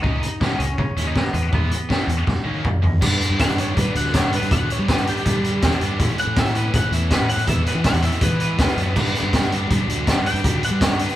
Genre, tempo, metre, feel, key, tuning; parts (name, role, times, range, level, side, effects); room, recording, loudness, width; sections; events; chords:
indie rock; 162 BPM; 4/4; straight; A4 = 439 Hz
twelve-string electric guitar; melody; 0.0-11.2 s; B3 to G5; -28 LUFS; equal
scooped high-gain guitar; riff; 0.0-11.2 s; G2 to E4; -26 LUFS; equal; distortion
fuzz fingered electric bass; bass; 0.0-11.1 s; C#2 to G3; -24 LUFS; equal; overdrive
raw garage drum kit; drums; 0.0-11.2 s; crash cymbal, hi-hat, kick drum, snare drum, toms; -20 LUFS; equal
moderate large studio reverb, RT60 1.4 s; band playing live in one room; -17 LUFS; side -13 dB against mid
0.0-3.0 A section; 3.0-11.2 B section
drum fill 2.3-3.0; clean electric guitar solo 3.0-11.2
0.0 C#madd9; 1.3 E; 2.3 F#; 3.0 G; 6.0 A; 7.5 E; 9.0 G